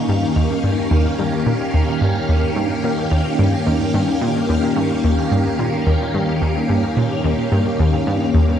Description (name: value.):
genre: ambient, sequencer-driven space music.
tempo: 109 BPM.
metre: 4/4.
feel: straight.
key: unclear.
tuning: A4 = 440 Hz.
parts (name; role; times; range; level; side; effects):
phased string machine; sustained chords; 0.0-8.6 s; Eb3 to F5; -19 LUFS; equal; ensemble chorus, phaser.
analog pluck; riff; 0.1-8.6 s; Eb2 to Bb2; -18 LUFS; equal; chorus, tape echo.
room: wet huge ambient reverb, RT60 8.4 s.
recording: dark, warm production.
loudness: -16 LUFS.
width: side -9 dB against mid.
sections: 0.0-8.6 A section.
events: none.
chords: 0.0 Eb7.